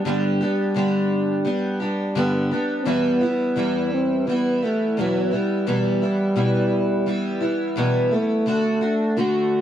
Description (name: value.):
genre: pop.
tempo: 86 BPM.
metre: 4/4.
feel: straight.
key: unclear.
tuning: A4 = 440 Hz.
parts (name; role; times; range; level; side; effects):
dark French horn; melody; 0.0-9.6 s; F#3 to F#4; -22 LUFS; equal; none.
picked steel-string acoustic guitar; accompaniment; 0.0-9.6 s; E2 to G4; -22 LUFS; equal; double-tracked left and right.
room: little or no reverb.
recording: dry, close 1970s-style studio recording.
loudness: -19 LUFS.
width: side -10 dB against mid.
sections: 0.0-9.6 A section.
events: none.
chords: 0.0 G; 2.9 Em; 8.5 D.